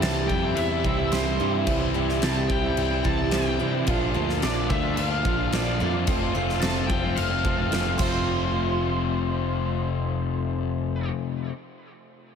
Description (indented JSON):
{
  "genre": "rock, shoegaze and dream pop",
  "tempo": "109 BPM",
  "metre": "4/4",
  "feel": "straight",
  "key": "F major",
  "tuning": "A4 = 441 Hz",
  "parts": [
    { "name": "octave-fuzz lead guitar", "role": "melody", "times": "0.0-11.1 s", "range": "C5 to A5", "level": "-32 LUFS", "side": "equal", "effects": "distortion, tape echo" },
    { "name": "picked twelve-string acoustic guitar", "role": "arpeggios", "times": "0.0-11.5 s", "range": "F3 to G4", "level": "-33 LUFS", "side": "right 3 dB", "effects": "ensemble chorus, tape echo" },
    { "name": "overdriven electric guitar", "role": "riff", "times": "0.0-11.5 s", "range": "F2 to F4", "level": "-28 LUFS", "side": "left 11 dB", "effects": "lush chorus" },
    { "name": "twangy electric guitar", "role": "riff", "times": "0.0-11.5 s", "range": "Bb2 to F4", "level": "-30 LUFS", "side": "right 11 dB", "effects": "reverse reverb" },
    { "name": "modern bright picked electric bass", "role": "bass", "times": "0.0-11.1 s", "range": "F1 to C3", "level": "-28 LUFS", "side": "equal", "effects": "none" },
    { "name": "huge arena drum kit", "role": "drums", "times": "0.0-8.1 s", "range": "crash cymbal, kick drum, snare drum", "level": "-28 LUFS", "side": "equal", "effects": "none" }
  ],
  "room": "light reverb, small room ambience",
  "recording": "none",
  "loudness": "-22 LUFS",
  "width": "side -7 dB against mid",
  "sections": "0.0-8.3 A section; 8.3-10.5 B section",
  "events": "none",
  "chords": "0.0 C; 3.9 Bbmaj7; 6.1 F"
}